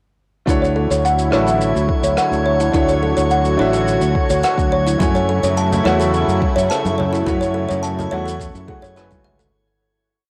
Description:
sunset chillout; 106 BPM; 4/4; straight; F# minor; A4 = 440 Hz
clear grand piano; accompaniment; 0.5-9.6 s; A3 to G#5; -25 LUFS; equal; analog delay, shimmer reverb
lush unison pad; sustained chords; 0.9-9.5 s; C#3 to C#5; -25 LUFS; equal; chorus, phaser, shimmer reverb
kalimba; arpeggios; 0.5-9.5 s; E4 to A5; -22 LUFS; equal; low-pass filter, analog delay, shimmer reverb
modern bright fingered electric bass; bass; 0.5-9.5 s; A1 to F#2; -23 LUFS; equal; tube saturation
electronic kick drum; drums; 0.5-9.2 s; -24 LUFS; equal; cassette tape
shaker and rim click; drums; 0.5-9.5 s; -32 LUFS; equal; cassette tape
drifting glass-harmonics texture; texture; 1.0-9.6 s; C#5 to C#6; -34 LUFS; equal; chorus, built-in reverb, shimmer reverb
congas; percussion; 5.0-9.2 s; -30 LUFS; equal
moderate spring reverb, RT60 2.2 s; home recording on cassette; -17 LUFS; mono
0.5-9.5 groove
filter sweep on kalimba 0.5-9.5; fade-out 6.5-9.5
0.5 Dmaj9; 5.0 F#m7

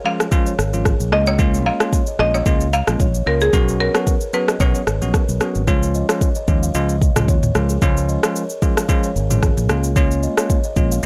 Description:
afrobeats; 112 BPM; 4/4; swing 55% on 16ths; Db mixolydian; A4 = 440 Hz
buzzing marimba with hard mallets; melody; 0.0-5.4 s; Ab4 to F5; -23 LUFS; equal
bell-like tine electric piano; accompaniment; 0.0-11.1 s; F3 to Gb4; -26 LUFS; equal
buzzing kalimba; riff; 0.1-11.1 s; Ab4 to F5; -30 LUFS; equal; analog delay
afro-pop drum kit; drums; 0.2-11.1 s; kick drum, rim click, shaker, toms; -20 LUFS; equal
fingered electric bass; bass; 0.6-11.1 s; Ab1 to Eb2; -22 LUFS; equal
little or no reverb; dry, gritty hardware recording, transformer saturation; -18 LUFS; mono
0.0-5.7 A section; 5.7-11.1 B section
0.0 Db; 1.1 Bbm7; 3.5 Cbsus2; 5.7 Db; 9.7 Bbm7

